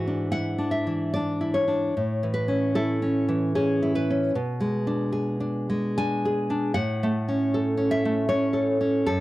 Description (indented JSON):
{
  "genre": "romantic piece for solo classical guitar",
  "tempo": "76 BPM",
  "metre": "3/4",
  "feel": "rubato",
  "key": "A major",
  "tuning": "A4 = 439 Hz",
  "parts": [
    { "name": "nylon-string guitar", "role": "solo", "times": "0.0-9.2 s", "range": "F#2 to G#5", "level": "-22 LUFS", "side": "equal", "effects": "none" }
  ],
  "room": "studio ambience",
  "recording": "dry, close 1970s-style studio recording",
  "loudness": "-22 LUFS",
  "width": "side -16 dB against mid",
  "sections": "0.0-9.2 A section",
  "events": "none",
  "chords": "0.0 E7/G#; 1.9 A; 4.3 G#dim/B; 6.7 A"
}